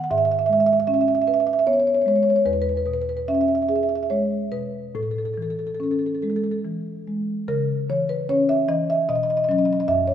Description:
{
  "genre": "classical, contemporary piece for solo marimba",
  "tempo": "69-78 BPM",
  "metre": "3/4",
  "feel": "rubato",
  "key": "C# minor",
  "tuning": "A4 = 441 Hz",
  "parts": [
    { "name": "marimba with soft mallets", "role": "solo", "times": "0.0-10.1 s", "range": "E2 to F#5", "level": "-19 LUFS", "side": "equal", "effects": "none" }
  ],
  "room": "moderate scoring stage reverb, RT60 2.0 s",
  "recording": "none",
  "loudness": "-19 LUFS",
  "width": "side -9 dB against mid",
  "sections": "0.0-7.5 A section; 7.5-10.1 B section",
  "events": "none",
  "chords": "0.1 C#m7/G#; 2.5 E6; 5.0 Amaj7; 7.5 C#m; 9.1 Badd9"
}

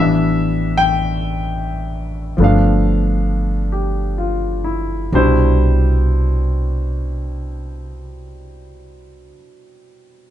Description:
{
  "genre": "jazz ballad",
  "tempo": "41-51 BPM",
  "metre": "4/4",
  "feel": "swing 68% on 8ths",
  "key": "C major",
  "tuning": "A4 = 439 Hz",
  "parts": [
    { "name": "clear concert grand piano", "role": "accompaniment", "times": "0.0-10.3 s", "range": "B2 to G5", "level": "-18 LUFS", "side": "left 2 dB", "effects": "none" },
    { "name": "upright bass", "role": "bass", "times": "0.0-9.3 s", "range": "G1 to C2", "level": "-18 LUFS", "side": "right 1 dB", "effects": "none" }
  ],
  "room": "light reverb",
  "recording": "nothing above 10.9 kHz",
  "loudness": "-15 LUFS",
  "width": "side -12 dB against mid",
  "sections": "0.0-5.1 A section; 5.1-10.3 B section",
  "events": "slowing down 0.0-5.1",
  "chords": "0.0 A7sus4; 2.4 G7; 5.1 Cmaj7"
}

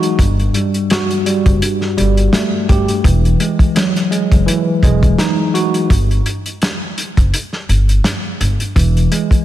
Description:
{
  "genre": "hip hop, boom-bap hip-hop",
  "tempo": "84 BPM",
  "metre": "4/4",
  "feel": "swing 55% on 16ths",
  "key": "unclear",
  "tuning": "A4 = 440 Hz",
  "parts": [
    { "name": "tine electric piano", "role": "accompaniment", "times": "0.0-9.4 s", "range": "G2 to G4", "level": "-16 LUFS", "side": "equal", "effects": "medium stereo tremolo, high-pass filter, low-pass filter" },
    { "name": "warm soul drum kit", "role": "drums", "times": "0.0-9.4 s", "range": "hi-hat, kick drum, snare drum", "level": "-16 LUFS", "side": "equal", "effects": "none" },
    { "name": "upright bass", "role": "bass", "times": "0.2-9.1 s", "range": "E1 to G1", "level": "-15 LUFS", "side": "equal", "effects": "none" }
  ],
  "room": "light reverb, studio reverb",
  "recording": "none",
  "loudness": "-12 LUFS",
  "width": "side -13 dB against mid",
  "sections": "0.0-9.4 A section",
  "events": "break 5.9-8.8; kick muted 7.3-8.8",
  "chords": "0.2 Gsus2; 3.0 Emaj9; 5.9 N.C.; 8.8 E"
}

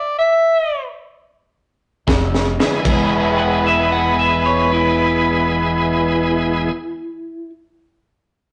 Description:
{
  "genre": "electric blues shuffle",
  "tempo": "76-88 BPM",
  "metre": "4/4",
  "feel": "swing 68% on 8ths",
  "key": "E major",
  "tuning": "A4 = 441 Hz",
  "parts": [
    { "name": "mellow harmonica", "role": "melody", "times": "0.0-6.7 s", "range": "B4 to E5", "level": "-21 LUFS", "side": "equal", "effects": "overdrive, slapback echo" },
    { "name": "overdriven electric guitar", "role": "riff", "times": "2.1-6.7 s", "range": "F2 to G#4", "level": "-25 LUFS", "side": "equal", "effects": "none" },
    { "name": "upright bass", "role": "bass", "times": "2.1-6.7 s", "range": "E1 to F1", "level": "-26 LUFS", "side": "equal", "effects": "none" },
    { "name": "crunchy breakbeat drum kit", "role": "drums", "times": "2.1-3.1 s", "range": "crash cymbal, kick drum, snare drum", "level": "-22 LUFS", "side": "equal", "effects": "none" },
    { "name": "bright tonewheel organ", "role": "accompaniment", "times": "2.6-6.7 s", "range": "E3 to G#4", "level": "-23 LUFS", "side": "equal", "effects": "slow rotary speaker, overdrive" },
    { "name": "electric guitar at the edge of break-up", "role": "second line", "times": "3.4-7.5 s", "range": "E4 to F#5", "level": "-24 LUFS", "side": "equal", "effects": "none" }
  ],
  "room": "moderate stone room reverb, RT60 1.0 s",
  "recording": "rough rehearsal-room recording, tube saturation, nothing above 10.6 kHz",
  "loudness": "-17 LUFS",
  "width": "mono",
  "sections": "0.0-2.8 A section; 2.8-6.0 B section",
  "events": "slowing down 0.0-2.8; stop 0.0-2.1; drum fill 2.1-2.8",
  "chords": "0.0 N.C.; 2.1 F5; 2.8 E"
}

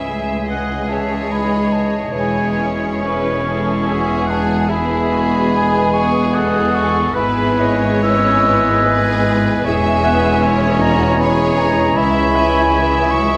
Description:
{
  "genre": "classical",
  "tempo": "63-80 BPM",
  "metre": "3/4",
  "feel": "rubato",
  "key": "unclear",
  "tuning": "A4 = 440 Hz",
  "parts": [
    { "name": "warm studio violin section", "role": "melody", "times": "0.0-13.4 s", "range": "G#4 to E5", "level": "-28 LUFS", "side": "equal", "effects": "none" },
    { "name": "concert flute", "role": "second line", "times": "0.0-13.4 s", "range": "G#5 to E6", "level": "-23 LUFS", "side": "equal", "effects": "none" },
    { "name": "rich studio violin section", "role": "second line", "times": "0.0-13.4 s", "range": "E4 to G#4", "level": "-31 LUFS", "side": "equal", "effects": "none" },
    { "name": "warm oboe", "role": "second line", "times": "0.0-13.2 s", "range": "G#4 to C#5", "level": "-29 LUFS", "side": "equal", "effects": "none" },
    { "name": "mellow bassoon", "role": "accompaniment", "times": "0.0-13.4 s", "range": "E3", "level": "-28 LUFS", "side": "equal", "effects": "none" },
    { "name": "rich studio viola section", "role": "accompaniment", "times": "0.0-13.4 s", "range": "F#3 to C#4", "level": "-28 LUFS", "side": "equal", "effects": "none" },
    { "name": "clear trombone section", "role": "sustained chords", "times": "0.0-13.4 s", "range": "E3 to G#3", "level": "-28 LUFS", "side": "equal", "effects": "none" },
    { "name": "mellow French horn section", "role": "sustained chords", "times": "0.0-13.4 s", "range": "G#3 to E4", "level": "-25 LUFS", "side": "equal", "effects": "none" },
    { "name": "dark trumpet section", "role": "stabs", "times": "0.0-13.4 s", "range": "G#4", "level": "-28 LUFS", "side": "equal", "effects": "none" },
    { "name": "warm studio cello section", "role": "bass", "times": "0.0-13.4 s", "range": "C#2 to G#2", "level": "-27 LUFS", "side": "equal", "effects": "none" },
    { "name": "warm studio double bass section", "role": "bass", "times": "0.0-13.4 s", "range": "E1 to C#2", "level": "-25 LUFS", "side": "equal", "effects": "none" },
    { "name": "warm clarinet", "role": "second line", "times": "0.5-13.3 s", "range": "C#5 to G#5", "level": "-26 LUFS", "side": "equal", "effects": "none" }
  ],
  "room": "wet recital hall reverb, RT60 1.8 s",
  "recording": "none",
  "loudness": "-16 LUFS",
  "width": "mono",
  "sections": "0.0-13.4 A section",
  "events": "none",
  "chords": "0.0 C#m; 2.1 C#m/E; 4.7 E; 7.1 E/G#; 9.7 C#m/E; 12.0 C#m"
}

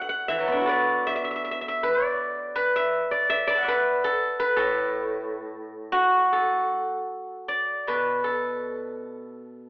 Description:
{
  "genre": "chinese traditional, Chinese solo plucked strings",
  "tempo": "74-83 BPM",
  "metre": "2/4",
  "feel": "rubato",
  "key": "A zhi mode",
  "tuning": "A4 = 439 Hz",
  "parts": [
    { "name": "steel-string zither", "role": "solo", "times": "0.0-9.7 s", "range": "A2 to D6", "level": "-22 LUFS", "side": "equal", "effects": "none" }
  ],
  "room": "moderate scoring stage reverb, RT60 1.8 s",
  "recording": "worn, warbling old tape, cassette tape, warbly pitch drift, telephone sound",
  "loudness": "-22 LUFS",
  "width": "side -25 dB against mid",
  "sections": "0.0-6.3 A section; 6.3-9.7 B section",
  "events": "none",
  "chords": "none"
}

